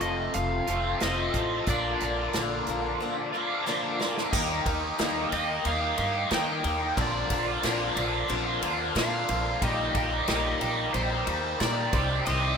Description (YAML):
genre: folk rock and heartland rock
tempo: 91 BPM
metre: 4/4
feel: straight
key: unclear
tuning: A4 = 439 Hz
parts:
  - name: overdriven slide guitar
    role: melody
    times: 0.0-12.6 s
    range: C5 to G5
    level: -32 LUFS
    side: right 1 dB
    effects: none
  - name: picked steel-string acoustic guitar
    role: accompaniment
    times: 0.0-12.6 s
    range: Bb2 to Bb4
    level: -34 LUFS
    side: left 6 dB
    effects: none
  - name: mellow tonewheel organ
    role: sustained chords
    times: 0.0-12.6 s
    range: A4 to Eb6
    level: -37 LUFS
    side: equal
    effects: slow rotary speaker
  - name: biting overdriven guitar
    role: riff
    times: 0.0-12.6 s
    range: F2 to G4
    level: -29 LUFS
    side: right 1 dB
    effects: phaser
  - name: upright bass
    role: bass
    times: 0.0-12.5 s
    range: F1 to Eb3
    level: -33 LUFS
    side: equal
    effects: none
  - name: natural country drum kit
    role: drums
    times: 0.0-12.4 s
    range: crash cymbal, hi-hat, kick drum, ride cymbal, snare drum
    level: -32 LUFS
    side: equal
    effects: none
room: moderate lush hall reverb, RT60 1.8 s, small room reverb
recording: rough home demo mix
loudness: -25 LUFS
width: side -6 dB against mid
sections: 0.0-4.3 A section; 4.3-12.6 B section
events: drum fill 3.7-4.3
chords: 0.0 F; 1.7 Bb; 4.3 Eb; 7.0 Bbadd9; 9.6 Eb/Bb; 11.9 Cmadd9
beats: 0.35 1.01 | 1.68 2.34 3.00 3.66 | 4.33 4.99 5.65 6.31 | 6.97 7.64 8.30 8.96 | 9.62 10.28 10.94 11.60 | 12.27